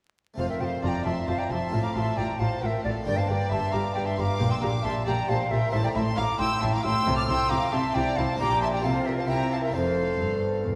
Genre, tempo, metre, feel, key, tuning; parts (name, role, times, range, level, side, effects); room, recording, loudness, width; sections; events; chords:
classical, baroque-style concerto movement with solo episodes; 135 BPM; 3/4; straight; F major; A4 = 441 Hz
harpsichord; accompaniment; 0.3-10.8 s; E2 to Bb4; -37 LUFS; equal
bright wooden flute; melody; 0.4-10.6 s; C5 to D6; -32 LUFS; equal
dark studio violin section; melody; 0.4-10.6 s; F5 to F6; -37 LUFS; equal
warm chamber violin section; second line; 0.4-10.7 s; A4 to A5; -35 LUFS; equal
dark studio viola section; accompaniment; 0.4-10.8 s; E4 to A4; -37 LUFS; equal
warm chamber cello section; bass; 0.4-10.8 s; E2 to C3; -33 LUFS; equal
warm chamber double bass section; bass; 0.4-10.8 s; E1 to C2; -33 LUFS; equal
wet scoring stage reverb, RT60 1.8 s; recorded in a church or concert hall, vinyl crackle; -26 LUFS; mono
0.4-10.8 A section
0.4 F; 1.7 F/A; 3.1 Gm; 4.4 Gm/Bb; 5.7 Am; 7.1 Am/C; 8.4 Gm/Bb; 8.8 F/C; 9.3 C7; 9.7 F